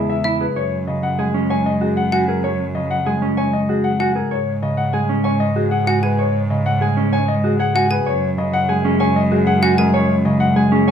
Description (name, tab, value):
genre	classical, minimalist pattern music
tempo	192 BPM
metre	6/4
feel	straight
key	unclear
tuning	A4 = 440 Hz
part	warm concert grand piano	melody	0.0-10.9 s	G#4 to G#5	-22 LUFS	left 6 dB	none
part	concert harp	accompaniment	0.0-10.9 s	C#3 to G#3	-20 LUFS	equal	none
part	mellow electric guitar	arpeggios	0.0-10.9 s	C#4 to C#5	-23 LUFS	right 5 dB	none
part	rich cello	bass	0.0-10.9 s	E2 to G#2	-22 LUFS	right 3 dB	none
part	xylophone with plastic mallets	arpeggios	0.2-10.0 s	E5 to G#5	-23 LUFS	left 3 dB	none
room	wet large studio reverb, RT60 1.1 s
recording	none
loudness	-15 LUFS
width	side -8 dB against mid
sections	0.0-10.9 A section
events	none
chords	0.0 E6; 0.6 F#5; 4.3 G#7(no3); 8.1 F#5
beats	0.25 | 0.56 0.88 1.19 1.50 1.81 2.13 | 2.44 2.75 3.06 3.38 3.69 4.00 | 4.31 4.63 4.94 5.25 5.56 5.88 | 6.19 6.50 6.81 7.13 7.44 7.75 | 8.06 8.38 8.69 9.00 9.31 9.63 | 9.94 10.25 10.56 10.88